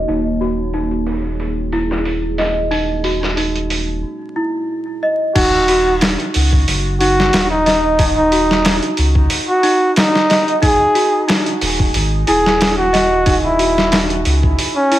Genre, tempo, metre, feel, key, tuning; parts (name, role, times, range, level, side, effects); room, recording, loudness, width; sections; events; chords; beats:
trip hop; 91 BPM; 4/4; swing 54% on 16ths; Eb phrygian; A4 = 440 Hz
deep dark ambient pad; sustained chords; 0.0-4.0 s; Bb3 to Db5; -25 LUFS; equal; chorus, built-in reverb
worn celesta; arpeggios; 0.0-15.0 s; Eb4 to Eb5; -20 LUFS; right 1 dB; low-pass filter, tape echo
warm sub bass; bass; 0.0-14.6 s; Eb1 to Db2; -20 LUFS; equal; tube saturation
trip hop sampler-style drum kit; drums; 0.1-15.0 s; crash cymbal, hi-hat, kick drum, snare drum; -18 LUFS; equal; high-pass filter on hats, high-pass filter on snare, high-pass filter on kick, high-pass filter on cymbals, high-pass filter on room
trumpet with bucket mute; melody; 5.4-15.0 s; Db4 to Ab4; -15 LUFS; equal; dub echo
light reverb, digital ambience; vinyl crackle, low-pass filter; -13 LUFS; side -14 dB against mid
0.0-5.4 A section; 5.4-15.0 B section
filter sweep on celesta 0.0-5.4
0.1 Gbadd9/Eb; 5.4 Ebm; 10.6 Gbsus2/Eb
| 0.08 0.74 1.40 2.06 | 2.71 3.37 4.03 4.69 | 5.35 6.01 6.67 7.33 | 7.99 8.65 9.31 9.97 | 10.63 11.29 11.95 12.61 | 13.26 13.92 14.58